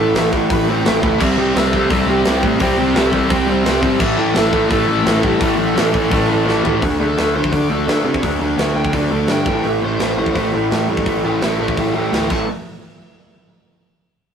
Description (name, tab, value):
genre	punk rock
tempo	170 BPM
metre	4/4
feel	straight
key	A minor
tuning	A4 = 440 Hz
part	dark smooth lead guitar	melody	0.0-12.5 s	C4 to B5	-24 LUFS	left 2 dB	overdrive
part	raw garage guitar	riff	0.0-12.4 s	A2 to D4	-18 LUFS	right 2 dB	overdrive
part	sludgy distorted guitar	riff	0.0-12.4 s	A2 to D4	-22 LUFS	left 4 dB	overdrive
part	growling picked electric bass	bass	0.0-12.5 s	G#1 to D3	-24 LUFS	equal	overdrive
part	tight metal drum kit	drums	0.2-12.4 s	crash cymbal, hi-hat, kick drum, snare drum, toms	-21 LUFS	equal	none
part	high-gain distorted guitar	riff	1.2-6.8 s	A2 to C4	-20 LUFS	left 1 dB	distortion
room	moderate small room reverb, RT60 0.5 s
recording	rough rehearsal-room recording, tube saturation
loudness	-14 LUFS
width	side -7 dB against mid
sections	0.0-6.8 A section; 6.8-12.5 B section; 12.5-13.9 C section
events	drum fill 6.5-6.8; lead electric guitar solo 6.8-12.5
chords	0.0 Am; 1.2 C; 4.0 A5; 6.8 D5; 9.5 Am; 12.3 A5; 12.5 N.C.